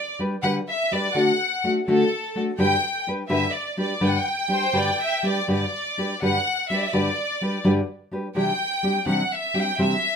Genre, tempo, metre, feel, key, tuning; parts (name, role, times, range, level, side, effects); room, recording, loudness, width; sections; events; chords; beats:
mexican folk, mariachi; 83 BPM (dotted quarters); 6/8; rubato; G major; A4 = 440 Hz
clear studio violin section; melody; 0.0-10.2 s; A4 to G5; -24 LUFS; left 1 dB
nylon-string guitar; accompaniment; 0.2-9.9 s; G2 to B4; -22 LUFS; equal
light reverb; minimal, uncompressed stereo recording; -21 LUFS; side -7 dB against mid
0.0-5.5 A section; 5.5-10.2 A section
0.0 G; 1.2 D; 2.6 G; 8.4 Cadd9
0.44 | 1.17 1.89 | 2.60 3.31 | 4.02 4.75 | 5.49 6.22 | 6.94 7.65 | 8.36 9.07 | 9.79